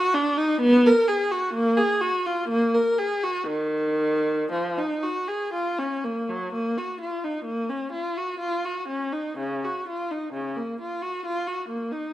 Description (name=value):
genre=classical, baroque-style suite movement for unaccompanied viola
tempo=58-67 BPM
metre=3/4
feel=rubato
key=Eb minor, Bb minor from 6.5 s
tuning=A4 = 438 Hz
part: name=rich viola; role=solo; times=0.0-12.1 s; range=Db3 to Bb4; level=-22 LUFS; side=equal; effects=none
room=wet stone room reverb, RT60 1.1 s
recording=heard from further back in the room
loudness=-23 LUFS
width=side -14 dB against mid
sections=0.0-6.5 A section; 6.5-12.1 A section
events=none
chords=none